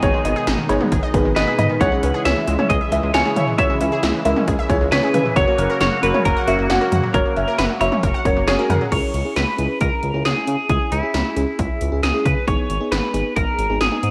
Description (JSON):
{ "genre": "synth-pop", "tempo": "135 BPM", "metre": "4/4", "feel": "straight", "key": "C# dorian", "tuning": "A4 = 440 Hz", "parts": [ { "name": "twelve-string electric guitar", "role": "melody", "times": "0.0-14.1 s", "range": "E4 to F#5", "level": "-25 LUFS", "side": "equal", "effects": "analog chorus" }, { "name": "clear concert grand piano", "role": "second line", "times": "0.0-8.8 s", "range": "A#4 to G#5", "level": "-25 LUFS", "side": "equal", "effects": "digital delay" }, { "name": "FM electric piano with soft pad layer", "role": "accompaniment", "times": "0.0-14.1 s", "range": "B3 to C#5", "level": "-27 LUFS", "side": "equal", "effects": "chorus, tremolo" }, { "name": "phased analog pad", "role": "sustained chords", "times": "0.0-8.9 s", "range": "B2 to F#4", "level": "-29 LUFS", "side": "equal", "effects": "phaser, chorus" }, { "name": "unison pluck", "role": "arpeggios", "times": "0.0-8.9 s", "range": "D#3 to F#5", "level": "-30 LUFS", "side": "equal", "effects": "digital delay" }, { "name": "smooth synth bass", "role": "bass", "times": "0.0-14.1 s", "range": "F#1 to C#3", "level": "-25 LUFS", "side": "equal", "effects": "none" }, { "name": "80s electronic pad drums", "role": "drums", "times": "0.0-14.1 s", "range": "cowbell, crash cymbal, hi-hat, kick drum, snare drum, toms", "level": "-24 LUFS", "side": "equal", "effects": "gated reverb on snare and toms, overdrive" } ], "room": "moderate lush hall reverb, RT60 2.0 s", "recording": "worn, warbling old tape, cassette tape, warbly pitch drift", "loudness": "-19 LUFS", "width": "mono", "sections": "0.0-8.9 A section; 8.9-14.1 B section", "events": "none", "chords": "0.0 G#m; 1.8 C#m; 5.4 F#; 8.9 C#m; 12.5 G#m" }